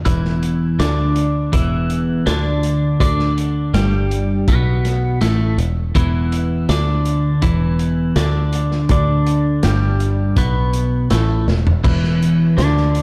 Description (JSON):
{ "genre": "psychedelic rock", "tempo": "82 BPM", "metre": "4/4", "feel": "straight", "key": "E minor", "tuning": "A4 = 440 Hz", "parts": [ { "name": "twelve-string electric guitar", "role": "riff", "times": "0.0-13.0 s", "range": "E2 to D4", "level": "-20 LUFS", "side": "equal", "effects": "phaser" }, { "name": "picked electric bass", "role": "bass", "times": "0.1-13.0 s", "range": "E1 to D2", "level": "-22 LUFS", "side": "equal", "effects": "none" }, { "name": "crunchy breakbeat drum kit", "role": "drums", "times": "0.1-13.0 s", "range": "crash cymbal, hi-hat, kick drum, snare drum, toms", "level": "-24 LUFS", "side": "equal", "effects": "none" } ], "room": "light reverb", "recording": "none", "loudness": "-17 LUFS", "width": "mono", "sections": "0.1-13.0 A section", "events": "drum fill 11.5-11.8", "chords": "0.1 Em" }